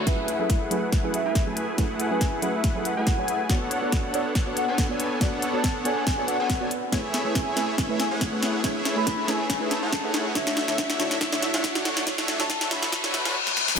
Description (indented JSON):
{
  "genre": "future bass",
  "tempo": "140 BPM",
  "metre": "4/4",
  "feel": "swing 54% on 16ths, half-time",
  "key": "F# minor",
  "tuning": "A4 = 440 Hz",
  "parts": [
    { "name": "airy breathy pad", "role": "sustained chords", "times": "0.0-13.3 s", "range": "F#3 to G#5", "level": "-36 LUFS", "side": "left 2 dB", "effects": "none" },
    { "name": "supersaw chords", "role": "riff", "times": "0.0-13.4 s", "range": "A3 to G#5", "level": "-28 LUFS", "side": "equal", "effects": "cassette tape, sidechain pumping, low-pass filter" },
    { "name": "riser and reverse cymbal", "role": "sound effects", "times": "0.0-13.8 s", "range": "none", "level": "-32 LUFS", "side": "left 2 dB", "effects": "none" },
    { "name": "soft octave-layered synth lead", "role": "melody", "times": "0.1-13.4 s", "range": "E5 to B5", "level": "-31 LUFS", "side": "left 1 dB", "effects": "chorus, phaser, sidechain pumping, dub echo" },
    { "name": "soft round pluck", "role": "accompaniment", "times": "0.1-13.4 s", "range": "D3 to E5", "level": "-32 LUFS", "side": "right 3 dB", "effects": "wide subtle chorus, sidechain pumping, dub echo" },
    { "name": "electronic kick drum", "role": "drums", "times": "0.1-13.0 s", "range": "none", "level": "-26 LUFS", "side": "equal", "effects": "studio reverb" },
    { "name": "trap drum kit", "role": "drums", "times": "0.1-13.8 s", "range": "hi-hat, snare drum", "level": "-28 LUFS", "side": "equal", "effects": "studio reverb" }
  ],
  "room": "light reverb, digital ambience",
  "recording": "high-pass filter",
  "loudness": "-22 LUFS",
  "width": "side -6 dB against mid",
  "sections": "0.1-13.8 A section",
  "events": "build-up 0.1-13.8; drum fill 0.1-13.4, 13.5-13.8; riser 0.1-13.4; filter sweep on supersaw synth 0.1-13.8; filter sweep 0.1-13.8; reverse cymbal 12.9-13.8",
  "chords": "0.1 F#m11; 3.5 Bm9; 6.7 Amaj7; 10.4 Dmaj9",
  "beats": "| 0.07 0.50 0.93 1.35 | 1.78 2.21 2.64 3.07 | 3.50 3.92 4.35 4.78 | 5.21 5.64 6.07 6.50 | 6.92 7.35 7.78 8.21 | 8.64 9.07 9.50 9.93 | 10.35 10.78 11.21 11.64 | 12.07 12.50 12.93 13.35 | 13.78"
}